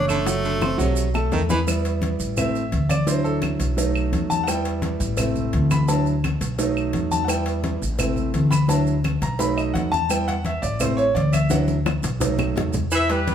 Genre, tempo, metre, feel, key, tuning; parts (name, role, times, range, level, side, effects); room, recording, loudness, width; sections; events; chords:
latin, salsa; 171 BPM; 4/4; straight; E minor; A4 = 441 Hz
edgy tenor saxophone; melody; 0.0-1.1 s; A3; -27 LUFS; right 1 dB
clear concert grand piano; accompaniment; 0.0-13.3 s; F#3 to C#6; -24 LUFS; right 2 dB
upright bass; bass; 0.0-13.3 s; F#1 to E2; -23 LUFS; left 1 dB
warm baritone saxophone; second line; 0.1-1.6, 12.9-13.2 s; C3 to E3; -26 LUFS; right 1 dB
bongos and cowbell; percussion; 0.1-13.3 s; -31 LUFS; left 2 dB
claves; percussion; 0.1-13.1 s; -33 LUFS; right 3 dB
congas; percussion; 0.1-13.3 s; -29 LUFS; left 2 dB
maracas; percussion; 0.1-13.3 s; -34 LUFS; right 5 dB
mellow trumpet section; melody; 12.9-13.3 s; G4 to E5; -22 LUFS; left 1 dB
moderate large studio reverb, RT60 1.2 s; band playing live in one room; -19 LUFS; side -9 dB against mid
0.0-1.7 A section; 1.7-12.9 B section
drum fill 0.6-1.7, 11.5-12.9; grand piano solo 1.7-12.9
0.3 F#dim; 1.0 B7(no3); 1.7 Em; 2.4 Am; 3.1 Dadd9; 3.8 B7; 4.5 Em; 5.2 Am; 5.9 Dadd9; 6.6 B7; 7.3 Em; 8.0 Am; 8.7 Dadd9; 9.4 B7; 10.1 Em; 10.8 Am; 11.5 Dadd9; 12.2 B7